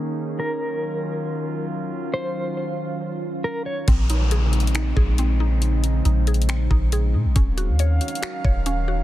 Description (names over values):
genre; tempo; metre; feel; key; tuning
hip hop, atmospheric cloud-rap; 138 BPM; 4/4; half-time; Bb minor; A4 = 441 Hz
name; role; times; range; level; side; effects
warbly tape-like pad; sustained chords; 0.0-9.0 s; Db3 to F5; -28 LUFS; equal; chorus, built-in reverb, sidechain pumping, low-pass filter
mellow electric guitar; melody; 0.4-3.9 s; Bb4 to Db5; -29 LUFS; left 1 dB; tremolo, low-pass filter, tape echo
mallet-like synth pluck; arpeggios; 3.9-9.0 s; C4 to Db5; -32 LUFS; left 2 dB; chorus, tape echo
soft 808-style bass; bass; 3.9-9.0 s; Eb1 to Bb2; -20 LUFS; equal; none
trap drum kit; drums; 3.9-8.8 s; finger snaps, hi-hat, kick drum; -22 LUFS; equal; soft clipping on snare
downlifter; sound effects; 3.9-7.4 s; none; -34 LUFS; equal; none
room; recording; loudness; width
little or no reverb; dense, heavily limited modern master; -20 LUFS; side -14 dB against mid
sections
0.0-3.9 A section; 3.9-9.0 B section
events
filter sweep 0.0-3.9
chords
0.4 Ebm9; 3.9 Bbm11; 7.4 Ebm9